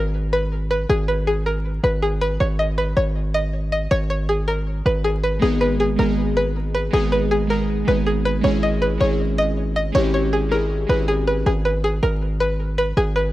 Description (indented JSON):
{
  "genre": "hip hop",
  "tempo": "159 BPM",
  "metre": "4/4",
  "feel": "half-time",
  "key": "G# minor",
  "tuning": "A4 = 438 Hz",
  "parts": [
    { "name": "string-like resonator pluck", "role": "melody", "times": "0.0-13.3 s", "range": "G#4 to D#5", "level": "-22 LUFS", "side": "equal", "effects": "chorus" },
    { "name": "distorted 808-style bass", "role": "bass", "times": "0.0-13.3 s", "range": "G#1", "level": "-22 LUFS", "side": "equal", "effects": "distortion" },
    { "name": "glassy digital keys", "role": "accompaniment", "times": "5.4-11.5 s", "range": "G#3 to G#4", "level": "-23 LUFS", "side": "equal", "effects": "chorus" }
  ],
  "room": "little or no reverb",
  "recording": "worn, warbling old tape, cassette tape, vinyl crackle, warbly pitch drift",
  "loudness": "-18 LUFS",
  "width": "side -15 dB against mid",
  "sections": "0.0-13.3 A section",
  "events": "none",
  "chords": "0.0 N.C.; 5.4 G#m; 8.4 C#m/G#; 11.5 G#m"
}